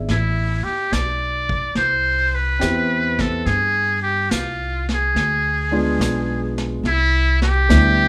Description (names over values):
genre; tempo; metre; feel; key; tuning
jazz ballad; 71 BPM; 4/4; swing 68% on 8ths; A minor; A4 = 440 Hz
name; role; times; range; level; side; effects
warm concert grand piano; accompaniment; 0.0-8.1 s; G3 to E5; -26 LUFS; equal; none
upright bass; bass; 0.0-8.1 s; A1 to G2; -24 LUFS; equal; none
trumpet with metal mute; melody; 0.1-8.1 s; E4 to D5; -22 LUFS; equal; none
vintage brush drum kit; drums; 0.1-8.1 s; brushed snare drum, hi-hat, kick drum, snare drum; -28 LUFS; equal; none
room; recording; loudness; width
moderate large studio reverb, RT60 0.9 s; none; -19 LUFS; mono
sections
0.1-8.1 A section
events
none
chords
0.1 Am7; 3.5 G7b9; 6.8 Cmaj7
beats
| 0.08 0.93 1.77 2.62 | 3.47 4.32 5.16 6.01 | 6.85 7.69